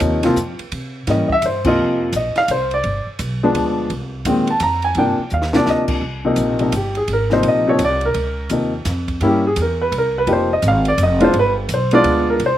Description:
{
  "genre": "jazz piano trio",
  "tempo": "169 BPM",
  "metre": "3/4",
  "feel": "swing 64% on 8ths",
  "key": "C minor",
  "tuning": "A4 = 440 Hz",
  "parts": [
    { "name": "warm baby grand piano", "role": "melody", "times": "0.0-12.6 s", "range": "Bb2 to Bb5", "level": "-16 LUFS", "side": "equal", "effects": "none" },
    { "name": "upright bass", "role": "bass", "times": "0.0-12.6 s", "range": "F1 to C3", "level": "-22 LUFS", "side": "right 1 dB", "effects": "none" },
    { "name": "compact cocktail drum kit", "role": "drums", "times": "0.0-12.5 s", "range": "crash cymbal, hi-hat, kick drum, ride cymbal, snare drum", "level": "-29 LUFS", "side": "right 1 dB", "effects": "none" }
  ],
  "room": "little or no reverb",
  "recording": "recorded outdoors, with no room sound",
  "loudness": "-15 LUFS",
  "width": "side -12 dB against mid",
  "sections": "0.0-6.0 A section; 6.0-12.6 B section",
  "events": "band accent 1.6; drum fill 5.3-5.7; grand piano solo 6.0-12.6",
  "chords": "0.0 Dbmaj9; 0.7 C7; 1.8 F5; 2.8 G7b9; 3.9 Cm7; 7.1 Abadd9; 8.2 Dbadd9; 9.2 C7; 10.3 Fm7; 11.3 G7b9"
}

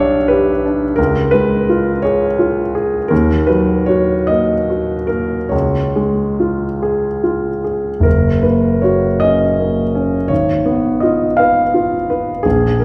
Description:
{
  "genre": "classical, romantic nocturne for solo piano",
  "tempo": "46-60 BPM (dotted quarters)",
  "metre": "12/8",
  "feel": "rubato",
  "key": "unclear",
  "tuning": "A4 = 440 Hz",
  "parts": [
    { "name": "clear grand piano", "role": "solo", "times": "0.0-12.8 s", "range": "F#1 to E#5", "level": "-15 LUFS", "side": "equal", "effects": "none" }
  ],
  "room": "wet recital hall reverb, RT60 1.4 s",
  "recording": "heard from further back in the room",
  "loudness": "-15 LUFS",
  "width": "mono",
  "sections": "0.0-12.8 A section",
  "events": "none",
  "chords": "0.0 G/B; 1.0 C#7; 3.1 D#m; 5.5 C#; 8.1 F#; 10.3 C#7/G#"
}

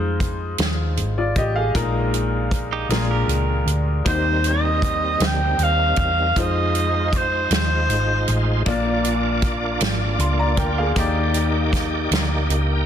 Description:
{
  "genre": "slow gospel",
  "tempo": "52 BPM (dotted quarters)",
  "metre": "6/8",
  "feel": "straight",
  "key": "Eb major",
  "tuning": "A4 = 440 Hz",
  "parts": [
    { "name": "clear grand piano", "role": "accompaniment", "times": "0.0-12.9 s", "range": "Bb2 to C6", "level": "-25 LUFS", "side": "left 3 dB", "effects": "none" },
    { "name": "hollow-body short-scale fingered electric bass", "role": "bass", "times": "0.0-12.9 s", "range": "Ab1 to F2", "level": "-22 LUFS", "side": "equal", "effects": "none" },
    { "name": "natural country drum kit", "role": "drums", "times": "0.2-12.7 s", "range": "hi-hat, kick drum, snare drum", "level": "-24 LUFS", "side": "right 1 dB", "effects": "none" },
    { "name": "semi-hollow electric guitar", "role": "second line", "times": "2.7-4.0 s", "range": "Eb4 to Bb4", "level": "-28 LUFS", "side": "right 7 dB", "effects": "none" },
    { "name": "bright tonewheel organ", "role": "sustained chords", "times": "4.0-12.9 s", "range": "G3 to G5", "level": "-26 LUFS", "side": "right 2 dB", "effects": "fast rotary speaker, overdrive, chorus vibrato" },
    { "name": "breathy alto saxophone", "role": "melody", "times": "4.1-8.4 s", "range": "C5 to G5", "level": "-22 LUFS", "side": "right 1 dB", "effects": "none" }
  ],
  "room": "light reverb, small room ambience",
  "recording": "dense, heavily limited modern master",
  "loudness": "-18 LUFS",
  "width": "side -9 dB against mid",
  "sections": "0.0-12.9 A section",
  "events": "none",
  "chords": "0.0 Fm7; 1.7 Bb7sus4; 2.9 Bb7; 4.1 Eb6; 6.4 Fm7; 8.7 Bb; 11.0 Ebmaj7"
}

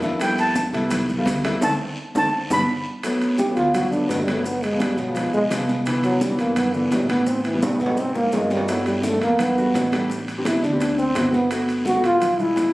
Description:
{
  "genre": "Afro-Cuban jazz",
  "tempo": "170 BPM",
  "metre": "4/4",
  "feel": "straight",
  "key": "G major from 3.0 s",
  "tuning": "A4 = 440 Hz",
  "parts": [
    { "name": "warm baby grand piano", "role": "accompaniment", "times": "0.0-12.6 s", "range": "C3 to G4", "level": "-24 LUFS", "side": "equal", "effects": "none" },
    { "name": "upright bass", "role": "bass", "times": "0.0-12.7 s", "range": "E1 to A2", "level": "-30 LUFS", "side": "equal", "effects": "none" },
    { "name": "bongos", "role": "percussion", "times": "0.0-12.7 s", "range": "none", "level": "-34 LUFS", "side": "left 2 dB", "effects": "none" },
    { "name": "congas", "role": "percussion", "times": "0.0-12.7 s", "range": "none", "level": "-29 LUFS", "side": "equal", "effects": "none" },
    { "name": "guiro", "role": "percussion", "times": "0.0-12.7 s", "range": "none", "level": "-38 LUFS", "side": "left 1 dB", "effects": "none" },
    { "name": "maracas", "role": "percussion", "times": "0.0-12.7 s", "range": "none", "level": "-40 LUFS", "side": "equal", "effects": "none" },
    { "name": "breathy bright concert flute", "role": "melody", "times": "0.2-2.6 s", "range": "G5 to B5", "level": "-23 LUFS", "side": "equal", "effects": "none" },
    { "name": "timbales", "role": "percussion", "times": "0.2-12.7 s", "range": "none", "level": "-31 LUFS", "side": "right 2 dB", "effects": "none" },
    { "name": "mellow trombone", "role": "second line", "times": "3.4-12.7 s", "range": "D3 to G4", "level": "-21 LUFS", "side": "right 1 dB", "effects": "none" }
  ],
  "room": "wet large studio reverb, RT60 1.5 s",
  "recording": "recorded on a phone in the room, studio reverb",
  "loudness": "-19 LUFS",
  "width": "side -18 dB against mid",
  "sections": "0.0-3.0 A section; 3.0-12.7 A section",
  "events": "flute solo 0.0-3.0; band accent 1.6-3.0; drum fill 2.2-3.0, 7.6-8.7; grand piano fill 2.3-3.0; trombone solo 3.0-12.7",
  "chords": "0.2 Fmaj9#11; 1.6 D5; 2.3 G; 3.0 Gmaj9; 4.5 G7b9; 5.9 Cmaj7; 7.3 Am7; 8.0 Ab13; 8.7 G6; 9.4 Em11; 10.1 Am11; 10.8 D13; 11.5 Gmaj9; 12.2 E7b9"
}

